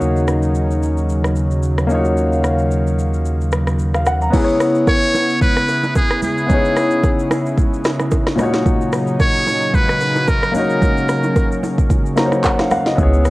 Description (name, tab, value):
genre	amapiano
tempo	111 BPM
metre	4/4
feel	swing 55% on 16ths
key	unclear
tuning	A4 = 438 Hz
part	warm concert grand piano	accompaniment	0.0-13.3 s	A#2 to A#5	-19 LUFS	left 2 dB	none
part	warm analog pad	sustained chords	0.0-13.3 s	C#3 to E#5	-22 LUFS	equal	chorus, sidechain pumping
part	sub bass with octave	bass	0.0-4.3 s	D#2	-19 LUFS	equal	none
part	afro-pop drum kit	drums	0.0-13.3 s	crash cymbal, handclaps, hi-hat, kick drum, rim click, shaker, snare drum	-18 LUFS	equal	vintage 12-bit sampler grit
part	congas and bongos	percussion	4.3-13.1 s	none	-26 LUFS	right 3 dB	none
part	trumpet with metal mute	melody	4.9-11.6 s	G#4 to C#5	-20 LUFS	equal	tape echo
part	deep log drum bass	bass	13.0-13.3 s	C#2	-13 LUFS	equal	none
room	light reverb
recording	cassette tape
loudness	-14 LUFS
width	side -19 dB against mid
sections	0.0-4.3 A section; 4.3-13.3 B section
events	kick muted 2.2-4.3; grand piano fill 11.9-13.0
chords	0.0 D#m7; 4.3 C#m7; 8.4 D#m7